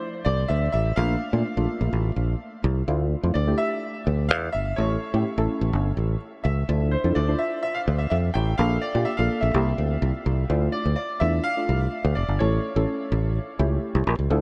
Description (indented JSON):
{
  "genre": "dance-pop",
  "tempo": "126 BPM",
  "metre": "4/4",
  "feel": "straight",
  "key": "D minor",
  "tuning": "A4 = 440 Hz",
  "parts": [
    { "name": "clear grand piano", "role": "melody", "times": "0.0-13.3 s", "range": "C5 to G5", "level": "-32 LUFS", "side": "equal", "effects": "subtle chorus, delay" },
    { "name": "deep mellow chord stab", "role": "accompaniment", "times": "0.0-14.4 s", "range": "F3 to C5", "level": "-32 LUFS", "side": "equal", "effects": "chorus" },
    { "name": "fingered electric bass", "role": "bass", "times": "0.3-14.4 s", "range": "F1 to Bb2", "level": "-25 LUFS", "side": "equal", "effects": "none" }
  ],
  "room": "moderate huge ambient reverb, RT60 7.2 s",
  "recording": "dreamy mix soaked in reverb",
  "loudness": "-24 LUFS",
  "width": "mono",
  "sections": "0.0-10.5 A section; 10.5-14.4 B section",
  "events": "none",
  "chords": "0.0 Dmadd9; 1.0 Bbmaj7; 2.9 Dmadd9; 4.8 A; 6.7 Dmadd9; 8.6 Bbmaj7; 9.5 C7; 10.5 Dmadd9; 12.4 A"
}